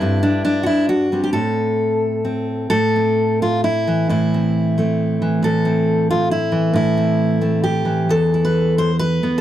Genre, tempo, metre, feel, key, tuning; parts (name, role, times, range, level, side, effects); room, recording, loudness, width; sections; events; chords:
folk, solo fingerstyle acoustic guitar; 134 BPM; 3/4; rubato; A minor; A4 = 440 Hz
fingerpicked steel-string acoustic guitar; solo; 0.0-9.4 s; E2 to C5; -16 LUFS; equal
little or no reverb; dry, close 1970s-style studio recording; -16 LUFS; side -12 dB against mid
0.0-2.7 A section; 2.7-9.4 B section
0.0 Gsus4; 1.3 Am; 8.1 E5